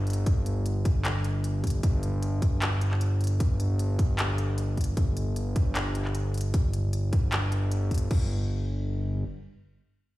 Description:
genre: future bass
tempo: 153 BPM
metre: 4/4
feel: half-time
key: unclear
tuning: A4 = 439 Hz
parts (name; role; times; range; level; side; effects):
- fat analog bass; bass; 0.0-9.2 s; G1; -27 LUFS; equal; sidechain pumping
- trap drum kit; drums; 0.1-8.2 s; crash cymbal, handclaps, hi-hat; -35 LUFS; equal; none
- electronic kick drum; drums; 0.3-8.2 s; none; -24 LUFS; equal; none
room: digital ambience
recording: played on a big sound system in a bare room, stone room reverb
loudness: -25 LUFS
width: side -17 dB against mid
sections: 0.0-8.1 A section; 8.1-10.2 B section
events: drop 0.0-8.1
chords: none

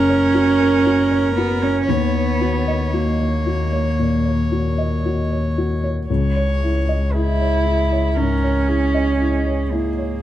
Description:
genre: neoclassical piano and strings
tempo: 57 BPM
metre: 4/4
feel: rubato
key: unclear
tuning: A4 = 439 Hz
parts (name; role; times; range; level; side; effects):
- warm cello; second line; 0.0-10.2 s; A#3 to E4; -20 LUFS; right 3 dB; none
- felt-muted upright piano; accompaniment; 0.0-10.2 s; C#2 to D#5; -23 LUFS; left 3 dB; none
- warm viola; accompaniment; 0.0-10.2 s; G#4 to C#5; -26 LUFS; right 1 dB; none
- dark double bass; bass; 0.0-10.2 s; F#1 to D#2; -21 LUFS; left 1 dB; none
room: moderate spring reverb, RT60 1.1 s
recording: heard from further back in the room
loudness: -16 LUFS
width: side -12 dB against mid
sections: 0.0-10.2 A section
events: none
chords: 0.0 F#; 1.9 D#m7; 6.1 C#madd9

